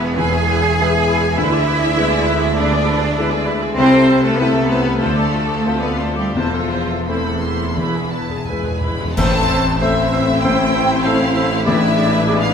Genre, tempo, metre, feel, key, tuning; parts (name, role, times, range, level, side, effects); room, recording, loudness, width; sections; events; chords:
classical, romantic movement for piano and orchestra; 82-102 BPM; 4/4; rubato; A minor; A4 = 443 Hz
clear studio violin section; melody; 0.0-12.5 s; D5 to C6; -27 LUFS; left 2 dB
warm concert grand piano; melody; 0.0-12.5 s; E1 to B4; -19 LUFS; left 3 dB
rich studio violin section; second line; 0.0-12.5 s; E4 to G#5; -24 LUFS; left 2 dB
clear studio viola section; accompaniment; 0.0-12.5 s; G#3 to D5; -24 LUFS; right 2 dB
clear studio cello section; bass; 0.0-12.5 s; E3 to G#4; -20 LUFS; right 2 dB
clear studio double bass section; bass; 0.0-12.5 s; A1 to E2; -24 LUFS; right 4 dB
cymbal swell, clash cymbals and concert bass drum; percussion; 6.3-10.4 s; -26 LUFS; right 1 dB
timpani; percussion; 6.3-9.1 s; E2; -29 LUFS; equal
clear clarinet; second line; 9.2-12.4 s; G#4 to C5; -26 LUFS; left 1 dB
mellow hollow large flute ensemble; second line; 9.2-12.5 s; E5 to A5; -24 LUFS; equal
warm oboe; second line; 9.2-12.4 s; D5 to E5; -26 LUFS; right 4 dB
warm French horn section; sustained chords; 9.2-12.5 s; G#3 to D4; -24 LUFS; left 4 dB
wet recital hall reverb, RT60 1.4 s; -14 LUFS; side -7 dB against mid
0.0-9.2 A section; 9.2-12.5 B section
timpani fill 7.8-9.2; band accent 9.2-9.8
0.0 E; 1.4 E7/D; 3.8 Am/C; 5.0 Dm7; 6.3 Am/E; 7.8 E; 9.2 Am; 11.7 E7/A